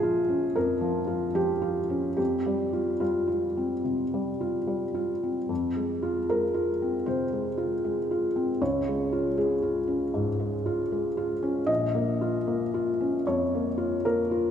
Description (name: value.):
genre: neoclassical minimalist piano.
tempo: 71-79 BPM.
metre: 4/4.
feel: rubato.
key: F minor.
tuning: A4 = 440 Hz.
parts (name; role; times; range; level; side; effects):
felt-muted upright piano; solo; 0.0-14.5 s; Bb1 to Eb5; -25 LUFS; equal; none.
room: wet church reverb, RT60 2.9 s.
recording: recorded in a church or concert hall.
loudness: -25 LUFS.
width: side -8 dB against mid.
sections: 0.0-5.5 A section; 5.5-14.5 A section.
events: none.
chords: 0.0 Bbm; 2.2 Fsus2; 5.5 Fm; 8.6 Db; 11.7 Bbm.